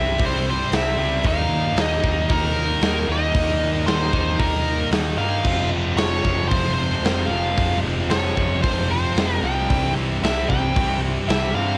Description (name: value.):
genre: quiet-loud alternative rock.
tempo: 114 BPM.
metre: 4/4.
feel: straight.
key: F minor.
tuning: A4 = 440 Hz.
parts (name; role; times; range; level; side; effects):
nasal lead guitar with a parked wah; melody; 0.0-11.8 s; Bb4 to G5; -27 LUFS; equal; overdrive, cassette tape.
distorted electric guitar; riff; 0.0-11.8 s; C3 to F4; -33 LUFS; equal; none.
scooped high-gain guitar; riff; 0.0-11.8 s; C3 to F4; -33 LUFS; equal; none.
tight distorted guitar; riff; 0.0-11.8 s; F2 to Eb4; -29 LUFS; equal; distortion, cassette tape.
overdriven picked electric bass; bass; 0.0-11.8 s; F1 to G2; -28 LUFS; equal; none.
big rock drum kit; drums; 0.2-11.4 s; crash cymbal, hi-hat, kick drum, snare drum; -26 LUFS; equal; cassette tape.
room: light reverb.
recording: home recording on cassette.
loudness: -21 LUFS.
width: mono.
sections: 0.0-11.8 A section.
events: none.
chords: 0.0 C; 1.2 Eb; 5.5 Fm; 9.7 C.